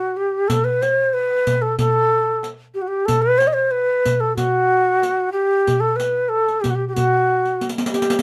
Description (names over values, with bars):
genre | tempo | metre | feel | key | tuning
Arabic maqam ensemble | 93 BPM | 4/4 | straight | B maqam hijaz | A4 = 441 Hz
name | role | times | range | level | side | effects
breathy reedy ney | melody | 0.0-8.2 s | F#4 to D#5 | -20 LUFS | equal | none
darbuka | percussion | 0.2-8.2 s | none | -27 LUFS | equal | none
riq | percussion | 0.5-8.2 s | none | -28 LUFS | equal | none
room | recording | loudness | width
light reverb | none | -19 LUFS | mono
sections
0.0-8.2 A section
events
drum fill 7.6-8.2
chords
none